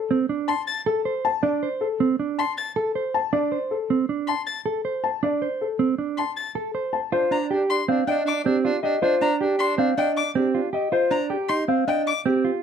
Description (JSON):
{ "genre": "classical, minimalist pattern music", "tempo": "158 BPM", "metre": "5/4", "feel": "straight", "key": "Eb lydian", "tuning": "A4 = 439 Hz", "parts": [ { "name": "warm concert grand piano", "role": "melody", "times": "0.0-12.5 s", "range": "G4 to A5", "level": "-25 LUFS", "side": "left 5 dB", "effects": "none" }, { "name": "mellow electric guitar", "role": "arpeggios", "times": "0.1-12.6 s", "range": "C4 to C5", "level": "-24 LUFS", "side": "right 7 dB", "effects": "none" }, { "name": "rich violin", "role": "arpeggios", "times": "0.5-12.2 s", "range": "G5 to A6", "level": "-27 LUFS", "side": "left 4 dB", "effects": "none" }, { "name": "clear soprano saxophone", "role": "second line", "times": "7.1-10.7 s", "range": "D4", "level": "-28 LUFS", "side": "right 4 dB", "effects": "none" } ], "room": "light reverb", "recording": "none", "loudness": "-21 LUFS", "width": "side -7 dB against mid", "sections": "0.0-7.1 A section; 7.1-12.6 A section", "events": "none", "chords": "0.0 D5; 7.1 Ebmaj9" }